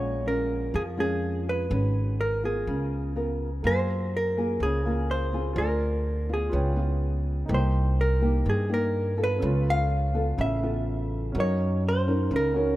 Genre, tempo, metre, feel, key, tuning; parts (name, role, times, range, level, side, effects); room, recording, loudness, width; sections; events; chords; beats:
bossa nova; 124 BPM; 4/4; straight; A4 = 440 Hz
vintage hollow-body jazz guitar; melody; 0.0-12.8 s; Ab4 to F5; -29 LUFS; equal
nylon-string guitar; accompaniment; 0.0-12.8 s; G2 to Cb5; -31 LUFS; left 1 dB
upright bass; bass; 0.0-12.8 s; Ab1 to G2; -27 LUFS; equal
warm grand piano; accompaniment; 3.6-12.8 s; Db4 to Ab5; -36 LUFS; right 2 dB
light reverb, small room ambience; rough home demo mix; -24 LUFS; side -16 dB against mid
0.0-12.8 A section
0.0 Bbm7; 1.7 Abm11; 2.7 Db6; 3.6 Gbmaj9; 5.6 Dm7b5; 6.5 Db7#11; 7.5 Cm7; 9.4 Db7alt; 11.3 Gb6
0.26 0.74 1.22 | 1.71 2.19 2.67 3.15 | 3.63 4.12 4.60 5.08 | 5.56 6.04 6.53 7.01 | 7.49 7.97 8.45 8.93 | 9.42 9.90 10.38 10.86 | 11.34 11.82 12.31